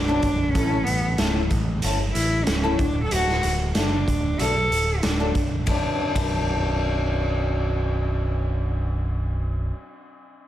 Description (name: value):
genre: quiet-loud alternative rock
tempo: 93 BPM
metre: 4/4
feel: straight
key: B minor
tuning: A4 = 440 Hz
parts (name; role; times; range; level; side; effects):
- rich cello; melody; 0.0-5.7 s; A3 to A4; -25 LUFS; right 1 dB; slapback echo
- picked electric bass; bass; 0.0-9.7 s; B0 to B1; -25 LUFS; equal; none
- picked steel-string acoustic guitar; arpeggios; 0.1-9.8 s; F#2 to A4; -28 LUFS; left 2 dB; slapback echo
- raw garage drum kit; drums; 0.2-6.3 s; hi-hat, kick drum, ride cymbal, snare drum; -27 LUFS; equal; none
room: light reverb, small room ambience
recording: none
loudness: -21 LUFS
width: side -12 dB against mid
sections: 0.0-5.7 A section; 5.7-8.2 B section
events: cello solo 0.0-5.7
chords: 0.0 Bm; 0.5 A; 2.8 D; 5.7 Bm